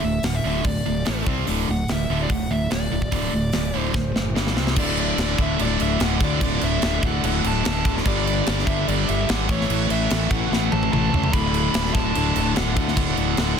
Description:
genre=hard rock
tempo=146 BPM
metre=4/4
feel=straight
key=D mixolydian, D major from 4.8 s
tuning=A4 = 440 Hz
part: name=dark smooth lead guitar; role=melody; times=0.0-13.6 s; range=C#5 to B5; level=-29 LUFS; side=right 1 dB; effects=overdrive
part: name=crunchy overdriven guitar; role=riff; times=0.0-13.6 s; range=D2 to C4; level=-26 LUFS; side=left 13 dB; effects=none
part: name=tight distorted guitar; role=riff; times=0.0-13.6 s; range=D2 to C4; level=-26 LUFS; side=right 12 dB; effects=distortion
part: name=fuzz fingered electric bass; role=bass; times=0.0-13.5 s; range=D1 to D2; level=-25 LUFS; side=equal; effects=overdrive
part: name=tight metal drum kit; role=drums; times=0.2-13.5 s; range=crash cymbal, hi-hat, kick drum, snare drum, toms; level=-25 LUFS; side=equal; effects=none
part: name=overdriven tonewheel organ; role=sustained chords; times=4.8-13.6 s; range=G3 to E5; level=-38 LUFS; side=left 1 dB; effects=none
room=small room ambience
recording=dense, heavily limited modern master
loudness=-19 LUFS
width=side -7 dB against mid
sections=0.0-4.8 A section; 4.8-13.6 B section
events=drum fill 3.9-4.8, 10.5-11.3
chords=0.0 D5; 1.1 A5; 1.3 C5; 1.5 D5; 4.4 G5; 4.6 C5; 4.8 D5; 8.1 G5; 9.5 A; 11.3 D

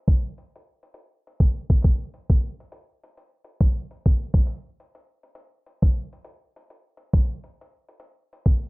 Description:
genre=hip hop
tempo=68 BPM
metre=4/4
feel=swing 66% on 16ths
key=none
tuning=none
part: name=dusty soul sampler-style drum kit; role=drums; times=0.1-8.7 s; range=hi-hat, kick drum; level=-18 LUFS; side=equal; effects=none
room=little or no reverb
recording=dark, warm production, low-pass filter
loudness=-20 LUFS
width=side -30 dB against mid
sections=0.0-8.7 A section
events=filter sweep 0.0-8.7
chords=none

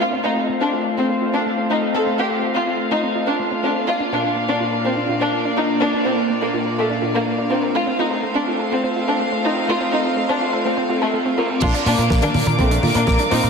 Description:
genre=italo disco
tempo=124 BPM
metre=4/4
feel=straight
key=Bb major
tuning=A4 = 438 Hz
part: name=dark studio violin section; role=melody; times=0.0-13.5 s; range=A3 to A4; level=-21 LUFS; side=left 1 dB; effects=diffuse ambient delay
part: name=warm studio string section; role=sustained chords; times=0.0-13.5 s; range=A3 to D6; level=-23 LUFS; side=equal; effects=low-pass filter
part: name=analog pluck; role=arpeggios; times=0.0-13.5 s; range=A3 to Bb4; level=-28 LUFS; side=right 3 dB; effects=chorus, diffuse ambient delay
part: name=mellow synth brass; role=stabs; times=0.2-13.5 s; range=Bb2 to Bb4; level=-26 LUFS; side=left 2 dB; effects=chorus, phaser, diffuse ambient delay
part: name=damped 70s drum kit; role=drums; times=0.2-13.5 s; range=crash cymbal, hi-hat, snare drum, toms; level=-30 LUFS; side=right 3 dB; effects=low-pass filter on hats, low-pass filter on toms, low-pass filter on cymbals, low-pass filter on snare, low-pass filter on room
part: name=fingered electric bass with an envelope filter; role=bass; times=11.6-13.5 s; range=Bb1 to Bb2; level=-20 LUFS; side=equal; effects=none
part: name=electronic kick drum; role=drums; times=11.6-13.2 s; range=none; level=-21 LUFS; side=equal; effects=overdrive
room=wet lush hall reverb, RT60 2.0 s, small room ambience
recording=dreamy mix soaked in reverb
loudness=-17 LUFS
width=side -5 dB against mid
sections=0.0-11.6 A section; 11.6-13.5 B section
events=filter sweep on synth arpeggio sound 0.0-11.6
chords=0.0 F; 3.9 Bb; 7.8 F; 11.6 Bb

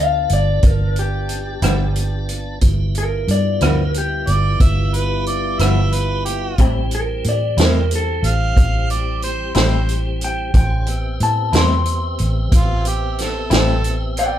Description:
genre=slow blues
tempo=61 BPM (dotted quarters)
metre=12/8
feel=straight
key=unclear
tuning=A4 = 440 Hz
part: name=electric guitar through a small old amp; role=melody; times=0.0-14.4 s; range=G4 to C6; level=-22 LUFS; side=left 2 dB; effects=none
part: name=tonewheel organ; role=sustained chords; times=0.0-14.4 s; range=E3 to A5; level=-28 LUFS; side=left 1 dB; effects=slow rotary speaker
part: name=vintage muted fingered electric bass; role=bass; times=0.0-14.4 s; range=G1 to A2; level=-19 LUFS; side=equal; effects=none
part: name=vintage drum kit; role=drums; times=0.3-14.3 s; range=hi-hat, kick drum, rim click, snare drum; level=-18 LUFS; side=equal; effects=none
part: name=clean electric guitar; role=accompaniment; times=1.6-13.7 s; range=G2 to E4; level=-23 LUFS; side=left 2 dB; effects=tremolo
part: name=clear harmonica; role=second line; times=4.3-14.0 s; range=F4 to F5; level=-24 LUFS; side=right 4 dB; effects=overdrive
room=moderate studio reverb, RT60 0.8 s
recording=band playing live in one room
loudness=-15 LUFS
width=side -11 dB against mid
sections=0.0-14.4 A section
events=none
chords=0.0 G13; 6.6 Am7

